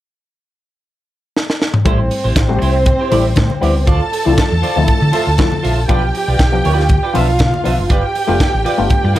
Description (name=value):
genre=disco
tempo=119 BPM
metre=4/4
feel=straight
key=A minor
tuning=A4 = 442 Hz
part: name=tight funk drum kit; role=drums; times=1.4-9.2 s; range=hi-hat, kick drum, snare drum, toms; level=-17 LUFS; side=equal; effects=none
part: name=muted clav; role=accompaniment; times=1.8-9.2 s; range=E3 to G4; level=-20 LUFS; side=left 5 dB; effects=phaser
part: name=dark studio string section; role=second line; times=1.9-9.2 s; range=C4 to A5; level=-18 LUFS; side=right 2 dB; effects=none
part: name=clean electric guitar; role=accompaniment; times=1.9-9.2 s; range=E4 to E5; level=-23 LUFS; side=right 3 dB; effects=wide subtle chorus
part: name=hollow-body short-scale fingered electric bass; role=bass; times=1.9-9.1 s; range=F1 to D3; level=-16 LUFS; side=equal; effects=none
part: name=congas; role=percussion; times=2.4-9.2 s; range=none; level=-25 LUFS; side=left 4 dB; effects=none
room=light reverb, studio reverb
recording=dark, warm production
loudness=-12 LUFS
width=side -14 dB against mid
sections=0.0-1.9 A section; 1.9-9.2 B section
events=drum fill 1.4-1.9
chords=0.0 N.C.; 1.9 Am7; 3.9 Dm7; 5.9 Bdim; 7.9 G7